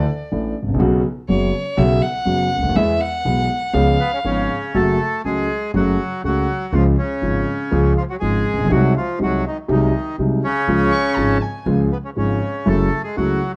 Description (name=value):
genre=tango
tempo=122 BPM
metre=4/4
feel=rubato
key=F# harmonic minor from 4.8 s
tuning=A4 = 442 Hz
part: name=warm violin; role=second line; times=0.0-4.5, 10.9-11.8 s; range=C#5 to C#6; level=-25 LUFS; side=equal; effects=none
part: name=warm concert grand piano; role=accompaniment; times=0.0-13.4 s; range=F#1 to A4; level=-21 LUFS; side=equal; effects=none
part: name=upright bass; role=bass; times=0.0-13.4 s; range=F#1 to E2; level=-25 LUFS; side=equal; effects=none
part: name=bandoneon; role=melody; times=4.0-13.5 s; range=C#3 to B4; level=-24 LUFS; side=equal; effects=none
room=moderate studio reverb, RT60 0.8 s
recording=worn, warbling old tape, cassette tape, warbly pitch drift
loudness=-19 LUFS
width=mono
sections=0.0-4.8 A section; 4.8-13.6 B section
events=violin solo 0.0-4.8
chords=0.0 Dsus2; 0.8 Bsus2; 2.8 E; 3.7 C#7; 4.8 F#m; 6.7 C#; 8.7 G#7/B#; 10.7 C#; 12.7 F#m7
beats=0.32 | 0.81 1.29 1.78 2.27 | 2.76 3.25 3.75 4.25 | 4.76 5.25 5.75 6.24 | 6.74 7.23 7.72 8.22 | 8.71 9.20 9.69 10.18 | 10.67 11.16 11.66 12.16 | 12.66 13.17